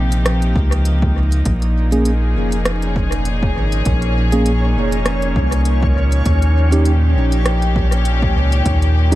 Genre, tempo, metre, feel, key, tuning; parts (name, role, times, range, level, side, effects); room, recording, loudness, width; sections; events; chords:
ambient dub; 100 BPM; 4/4; swing 56% on 16ths; Bb dorian; A4 = 440 Hz
rich chamber string section; sustained chords; 0.0-9.2 s; Bb2 to Ab4; -22 LUFS; left 1 dB
warm sub bass; bass; 0.0-9.2 s; F1 to Eb2; -15 LUFS; equal
organic electronic drum kit; drums; 0.1-9.2 s; hi-hat, rim click; -25 LUFS; equal; overdrive, small room reverb, dub echo
electronic kick drum; drums; 0.6-9.2 s; -21 LUFS; equal; overdrive, small room reverb
backwards swelling texture; texture; 2.4-9.2 s; Db4 to Db5; -25 LUFS; equal; built-in reverb
mellow tine electric piano; stabs; 1.9-9.2 s; Bb3 to Ab4; -22 LUFS; right 2 dB; dub echo
little or no reverb; echo-heavy mix, vinyl crackle; -14 LUFS; side -15 dB against mid
0.0-9.2 A section
0.0 Eb7; 1.5 Bbm7; 6.3 Eb7